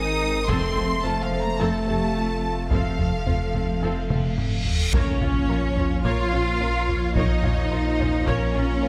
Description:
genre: cinematic, hybrid orchestral and electronic film score.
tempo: 108 BPM.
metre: 4/4.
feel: straight.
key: unclear.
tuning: A4 = 440 Hz.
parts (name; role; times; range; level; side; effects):
clear symphonic violin section; melody; 0.0-8.9 s; Db5 to Eb6; -36 LUFS; equal; none.
warm symphonic violin section; second line; 0.0-8.9 s; F4 to Eb6; -36 LUFS; equal; none.
airy breathy pad; sustained chords; 0.0-8.9 s; F3 to F5; -35 LUFS; equal; chorus.
mellow French horn section; sustained chords; 0.0-8.9 s; Db4 to C5; -35 LUFS; equal; none.
mellow trombone section; sustained chords; 0.0-8.9 s; Bb2 to C4; -35 LUFS; equal; none.
clear symphonic cello section; bass; 0.0-8.9 s; F3 to F4; -31 LUFS; equal; none.
punchy sub bass; bass; 0.0-8.9 s; F1 to Bb1; -31 LUFS; equal; none.
clear symphonic viola section; accompaniment; 0.5-8.9 s; A3 to Db5; -35 LUFS; equal; none.
resonant blip pluck; arpeggios; 0.5-8.9 s; F3 to Bb4; -39 LUFS; equal; none.
rich symphonic double bass section; bass; 0.5-8.9 s; F1 to Bb1; -32 LUFS; equal; none.
taiko ensemble; drums; 0.5-8.8 s; none; -29 LUFS; equal; none.
reverse cymbal and impact; sound effects; 4.2-7.2 s; none; -35 LUFS; equal; none.
room: moderate scoring stage reverb, RT60 1.8 s.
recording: none.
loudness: -23 LUFS.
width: mono.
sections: 0.0-4.9 A section; 4.9-8.9 B section.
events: drum fill 4.1-4.9; reverse cymbal 4.2-4.9; impact 4.9-7.2.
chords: 0.5 F; 4.9 Bbm.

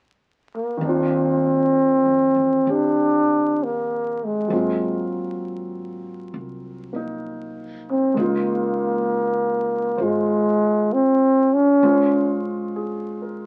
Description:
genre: jazz ballad.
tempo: 65 BPM.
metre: 4/4.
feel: swing 66% on 8ths.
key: unclear.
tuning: A4 = 445 Hz.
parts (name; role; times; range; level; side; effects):
breathy trombone; melody; 0.6-12.5 s; Ab3 to D4; -20 LUFS; equal; none.
warm concert grand piano; accompaniment; 0.8-13.5 s; Eb3 to C5; -28 LUFS; equal; none.
upright bass; bass; 0.8-13.5 s; Ab1 to F2; -39 LUFS; equal; none.
room: light reverb.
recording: very old 78 rpm record, vinyl crackle.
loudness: -20 LUFS.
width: mono.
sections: 0.8-13.5 A section.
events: none.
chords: 0.0 N.C.; 0.8 Ebmaj9; 4.5 Ab13; 8.2 Db6; 11.8 Bbm9.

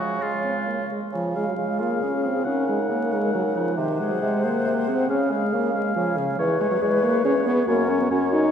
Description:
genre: quick classical-period movement for wind quintet.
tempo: 137 BPM.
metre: 3/4.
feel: rubato.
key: Db major.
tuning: A4 = 439 Hz.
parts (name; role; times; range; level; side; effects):
mellow hollow concert flute; melody; 0.0-8.5 s; Ab4 to Db5; -28 LUFS; left 7 dB; none.
warm oboe; second line; 0.0-8.5 s; F4 to Gb5; -30 LUFS; left 1 dB; none.
warm French horn; accompaniment; 0.0-8.5 s; Db3 to D#4; -24 LUFS; equal; none.
warm clarinet; accompaniment; 0.0-8.5 s; Ab3 to Ab4; -31 LUFS; right 4 dB; none.
warm bassoon; bass; 0.0-8.5 s; E2 to Db3; -27 LUFS; right 3 dB; none.
room: wet concert hall reverb, RT60 2.5 s.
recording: minimal, uncompressed stereo recording, vinyl crackle.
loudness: -20 LUFS.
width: side -8 dB against mid.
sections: 0.0-1.1 A section; 1.1-8.5 A section.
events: none.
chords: 0.0 Db; 2.5 Ebm7/Db; 3.8 Ab7/C; 5.1 Db; 6.4 C#m7/E; 7.7 F#.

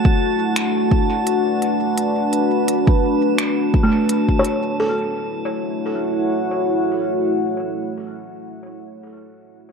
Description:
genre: ambient dub.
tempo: 85 BPM.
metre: 4/4.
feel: swing 55% on 16ths.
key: F# minor.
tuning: A4 = 437 Hz.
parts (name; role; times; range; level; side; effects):
deep dark ambient pad; sustained chords; 0.0-8.4 s; A3 to F#5; -19 LUFS; equal; chorus, built-in reverb.
drifting glass-harmonics texture; texture; 0.0-4.8 s; A5; -28 LUFS; right 4 dB; chorus, built-in reverb.
electronic kick drum; drums; 0.1-4.4 s; none; -17 LUFS; equal; none.
organic electronic drum kit; drums; 0.6-4.6 s; finger snaps, hi-hat; -26 LUFS; equal; dub echo.
buzzing kalimba; arpeggios; 3.8-8.5 s; A3 to C#5; -24 LUFS; equal; low-pass filter, analog delay.
room: moderate spring reverb, RT60 2.3 s.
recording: echo-heavy mix.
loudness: -17 LUFS.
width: side -5 dB against mid.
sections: 0.0-4.8 A section; 4.8-7.6 B section.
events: filter sweep on kalimba 0.0-4.8.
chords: 0.0 Bm7; 4.8 F#m7.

